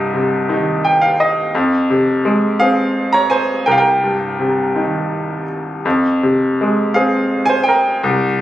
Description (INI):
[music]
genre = classical, lyrical solo piano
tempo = 56 BPM (dotted quarters)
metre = 6/8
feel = rubato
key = F minor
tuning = A4 = 444 Hz
[part]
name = bright grand piano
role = solo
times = 0.0-8.4 s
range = C2 to Bb5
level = -13 LUFS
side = equal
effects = none
[sound]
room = light reverb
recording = recorded on a phone in the room, club reverb, compression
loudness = -13 LUFS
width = side -13 dB against mid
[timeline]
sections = 0.0-8.4 A section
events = grand piano fill 0.5-1.5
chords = 0.0 Cm; 1.5 Fm; 3.7 Cm7; 5.9 Fm